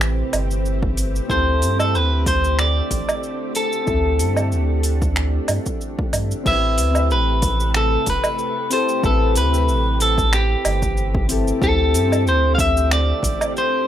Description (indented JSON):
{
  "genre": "sunset chillout",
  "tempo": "93 BPM",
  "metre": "4/4",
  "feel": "swing 54% on 16ths",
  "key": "A minor",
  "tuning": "A4 = 441 Hz",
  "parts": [
    { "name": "electric guitar at the edge of break-up", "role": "melody", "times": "0.0-13.9 s", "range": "G4 to F5", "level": "-21 LUFS", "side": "equal", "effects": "tape echo" },
    { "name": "soft electric-piano-like synth keys", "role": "accompaniment", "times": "0.0-13.9 s", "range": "C4 to B4", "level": "-26 LUFS", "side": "moving between left 5 dB and right 7 dB", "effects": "chorus, auto-pan" },
    { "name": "soft string machine", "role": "sustained chords", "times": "0.0-13.9 s", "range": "C3 to A4", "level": "-29 LUFS", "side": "equal", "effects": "ensemble chorus" },
    { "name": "warm sub bass", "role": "bass", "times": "0.0-13.3 s", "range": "E1 to G2", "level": "-20 LUFS", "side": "equal", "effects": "none" },
    { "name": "deep house drum kit", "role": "drums", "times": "0.0-13.7 s", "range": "cabasa, crash cymbal, finger snaps, hi-hat, woodblock", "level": "-24 LUFS", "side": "right 2 dB", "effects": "overdrive" },
    { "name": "electronic kick drum", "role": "drums", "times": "0.8-13.4 s", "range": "none", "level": "-24 LUFS", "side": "equal", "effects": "overdrive" }
  ],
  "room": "moderate small room reverb, RT60 0.5 s",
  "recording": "rough home demo mix",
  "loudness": "-16 LUFS",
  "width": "side -11 dB against mid",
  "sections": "0.0-6.5 A section; 6.5-13.9 B section",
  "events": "none",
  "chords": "0.0 Am9; 1.3 D7sus4; 6.5 Am9; 11.6 D7sus4",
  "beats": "0.00 0.65 | 1.29 1.94 2.58 3.23 | 3.87 4.52 5.17 5.81 | 6.46 7.10 7.75 8.39 | 9.04 9.68 10.33 10.97 | 11.62 12.26 12.91 13.55"
}